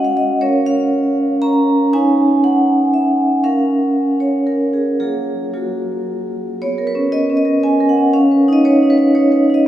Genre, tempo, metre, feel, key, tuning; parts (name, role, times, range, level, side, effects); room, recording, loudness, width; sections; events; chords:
classical, contemporary piece for solo vibraphone; 118 BPM; 3/4; straight; F# major, B major from 6.6 s; A4 = 440 Hz
vibraphone with medium mallets; solo; 0.0-9.7 s; F#3 to A#5; -13 LUFS; equal
wet cathedral reverb, RT60 4.3 s; heard from further back in the room, small room ambience; -13 LUFS; side -12 dB against mid
0.0-6.6 A section; 6.6-9.7 B section
0.4 C#6; 1.9 C#m11; 3.4 C#6; 5.0 F#maj7; 6.6 Bsus2; 8.1 C#sus2